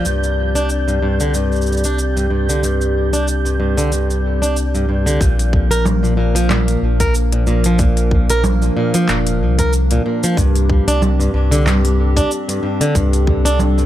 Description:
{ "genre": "folktronica", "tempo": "93 BPM", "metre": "4/4", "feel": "swing 56% on 16ths", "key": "Bb major", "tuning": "A4 = 439 Hz", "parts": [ { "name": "warbly tape-like pad", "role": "sustained chords", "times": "0.0-13.9 s", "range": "F3 to D5", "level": "-22 LUFS", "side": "left 1 dB", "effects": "chorus, built-in reverb" }, { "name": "fingerpicked plugged-in swing-style acoustic guitar", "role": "arpeggios", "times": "0.0-13.9 s", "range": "G2 to Bb4", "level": "-19 LUFS", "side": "right 1 dB", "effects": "digital delay" }, { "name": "warm sub bass", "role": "bass", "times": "0.0-13.9 s", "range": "F1 to C2", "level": "-17 LUFS", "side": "equal", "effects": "none" }, { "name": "flickering grainy texture", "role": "texture", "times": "0.0-5.2 s", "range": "G6", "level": "-29 LUFS", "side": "right 3 dB", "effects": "built-in reverb" }, { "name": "organic electronic drum kit", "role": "drums", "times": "0.1-13.9 s", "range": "congas, handclaps, hi-hat, shaker", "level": "-22 LUFS", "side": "right 2 dB", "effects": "none" }, { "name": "electronic kick drum", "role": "drums", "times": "5.2-13.4 s", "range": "none", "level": "-17 LUFS", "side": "equal", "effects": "none" } ], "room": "little or no reverb", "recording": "none", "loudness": "-14 LUFS", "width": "side -12 dB against mid", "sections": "0.0-5.2 A section; 5.2-13.9 B section", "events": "none", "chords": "0.1 Csus2; 5.2 Bb; 10.4 Csus2", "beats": "| 0.05 0.69 1.34 1.99 | 2.63 3.28 3.92 4.57 | 5.21 5.86 6.50 7.15 | 7.79 8.44 9.08 9.73 | 10.37 11.02 11.66 12.31 | 12.95 13.60" }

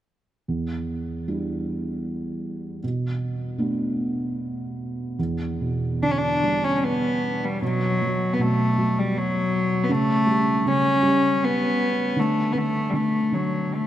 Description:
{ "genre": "celtic folk, Celtic slow air", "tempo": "72-81 BPM", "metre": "3/4", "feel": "rubato", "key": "E dorian", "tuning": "A4 = 440 Hz", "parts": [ { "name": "felt-muted upright piano", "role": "accompaniment", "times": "0.5-13.9 s", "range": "E2 to E4", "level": "-25 LUFS", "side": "right 2 dB", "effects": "none" }, { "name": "rich cello", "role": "melody", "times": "6.0-13.9 s", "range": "F#3 to D4", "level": "-21 LUFS", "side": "left 1 dB", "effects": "none" } ], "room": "wet cathedral reverb, RT60 5.7 s", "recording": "none", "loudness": "-21 LUFS", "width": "side -12 dB against mid", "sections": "0.5-5.2 A section; 5.2-13.9 B section", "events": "none", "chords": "0.5 Em7; 2.8 Bm7; 5.2 Em7; 7.6 B5; 9.9 A7/C#; 12.2 N.C.", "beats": "| 0.47 1.29 2.07 | 2.83 3.58 4.37 | 5.18 6.01 6.82 | 7.62 8.40 9.15 | 9.90 10.65 11.41 | 12.17 12.93 13.71" }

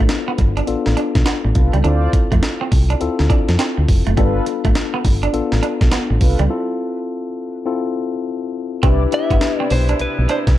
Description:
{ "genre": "R&B, new jack swing", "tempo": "103 BPM", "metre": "4/4", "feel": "swing 63% on 16ths", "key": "unclear", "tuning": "A4 = 440 Hz", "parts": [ { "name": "mellow tine electric piano", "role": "accompaniment", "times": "0.0-10.6 s", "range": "B3 to B4", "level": "-22 LUFS", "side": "moving between left 10 dB and left 2 dB", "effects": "auto-pan" }, { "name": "clean electric guitar", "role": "riff", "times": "0.0-10.4 s", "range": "G3 to D4", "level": "-25 LUFS", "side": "right 7 dB", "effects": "lush chorus" }, { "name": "solid FM bass", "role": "bass", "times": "0.0-10.6 s", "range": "F1 to F2", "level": "-17 LUFS", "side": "equal", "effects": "none" }, { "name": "breakbeat sampler-style drum kit", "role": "drums", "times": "0.1-10.6 s", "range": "hi-hat, kick drum, snare drum", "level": "-17 LUFS", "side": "equal", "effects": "none" }, { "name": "mellow synth brass", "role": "stabs", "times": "1.6-9.7 s", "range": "E4 to D5", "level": "-28 LUFS", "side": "equal", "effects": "chorus, tape echo" }, { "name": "warm studio string section", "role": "sustained chords", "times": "8.8-10.6 s", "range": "C3 to E4", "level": "-29 LUFS", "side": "left 1 dB", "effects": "none" }, { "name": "direct-recorded clean electric guitar", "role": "melody", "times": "9.1-10.4 s", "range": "B4 to E5", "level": "-22 LUFS", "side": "equal", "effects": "spring reverb" } ], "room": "digital ambience", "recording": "dark, warm production", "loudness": "-15 LUFS", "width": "side -14 dB against mid", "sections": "0.0-8.8 A section; 8.8-10.6 B section", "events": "break 6.5-8.8", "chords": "0.0 G9; 1.8 Dm7; 4.2 G9; 6.5 Fmaj7/C; 8.8 Cmaj9", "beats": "0.10 0.68 1.26 | 1.84 2.43 3.01 3.59 | 4.17 4.76 5.34 5.92 | 6.50 7.09 7.67 8.25 | 8.83 9.42 10.00 10.58" }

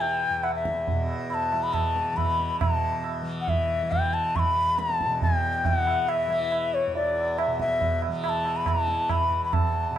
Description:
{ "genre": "indian classical, Hindustani", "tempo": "138 BPM", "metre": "4/4", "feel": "straight", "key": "E raga bhimpalasi", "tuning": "A4 = 441 Hz", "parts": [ { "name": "bansuri", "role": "melody", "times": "0.0-10.0 s", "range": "C#5 to C#6", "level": "-25 LUFS", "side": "left 2 dB", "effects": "none" }, { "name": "tanpura", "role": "drone", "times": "0.0-10.0 s", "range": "E2 to E3", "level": "-33 LUFS", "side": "left 1 dB", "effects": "none" }, { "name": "tabla", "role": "percussion", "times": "0.0-10.0 s", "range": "none", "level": "-28 LUFS", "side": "right 4 dB", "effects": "none" } ], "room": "moderate recital hall reverb, RT60 1.7 s", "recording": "dark, warm production", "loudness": "-23 LUFS", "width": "side -11 dB against mid", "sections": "0.0-2.6 A section; 2.6-10.0 B section", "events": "none", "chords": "none", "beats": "0.43 | 0.87 1.30 1.74 2.17 | 2.61 3.04 3.48 3.91 | 4.35 4.78 5.21 5.65 | 6.08 6.51 6.95 7.38 | 7.81 8.24 8.67 9.10 | 9.53 9.96" }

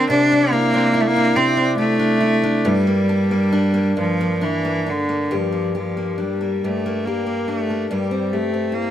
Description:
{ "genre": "celtic folk, Celtic slow air", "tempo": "69 BPM", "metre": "3/4", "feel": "uneven beats, rubato", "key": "G dorian", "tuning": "A4 = 439 Hz", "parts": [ { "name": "clear cello", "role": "melody", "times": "0.0-8.9 s", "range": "D3 to D4", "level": "-18 LUFS", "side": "equal", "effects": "none" }, { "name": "fingerpicked steel-string acoustic guitar", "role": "accompaniment", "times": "0.0-8.9 s", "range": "G2 to G4", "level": "-21 LUFS", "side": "left 1 dB", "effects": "none" } ], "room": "light reverb", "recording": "none", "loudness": "-17 LUFS", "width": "side -11 dB against mid", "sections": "0.0-5.3 A section; 5.3-8.9 B section", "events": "none", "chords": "0.1 Cadd9; 2.6 Gm; 7.9 C/G", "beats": "| 0.10 0.94 1.78 | 2.65 3.52 4.41 | 5.30 6.18 7.05 | 7.89 8.71" }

